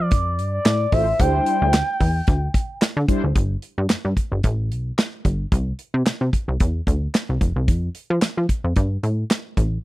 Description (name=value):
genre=early-eighties boogie funk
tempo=111 BPM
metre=4/4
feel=swing 56% on 16ths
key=unclear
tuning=A4 = 440 Hz
part: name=expressive portamento lead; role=melody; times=0.0-2.8 s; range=D5 to G5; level=-22 LUFS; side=left 1 dB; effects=chorus, slapback echo
part: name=plucky analog bass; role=bass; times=0.0-9.8 s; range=F1 to F3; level=-21 LUFS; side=equal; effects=none
part: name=modern studio drum kit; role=drums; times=0.1-9.7 s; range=handclaps, hi-hat, kick drum, snare drum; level=-20 LUFS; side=equal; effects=none
part: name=mellow synth brass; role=accompaniment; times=0.9-3.2 s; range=G3 to C5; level=-24 LUFS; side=equal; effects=chorus, phaser
room=small room reverb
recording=dry, close 1970s-style studio recording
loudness=-19 LUFS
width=side -17 dB against mid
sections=0.0-3.4 A section; 3.4-9.8 B section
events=none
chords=0.0 Fmaj7; 1.2 D9sus4; 3.4 G; 5.5 C; 7.4 F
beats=0.11 0.65 | 1.20 1.74 2.28 2.82 | 3.36 3.90 4.44 4.98 | 5.52 6.06 6.60 7.14 | 7.68 8.22 8.76 9.30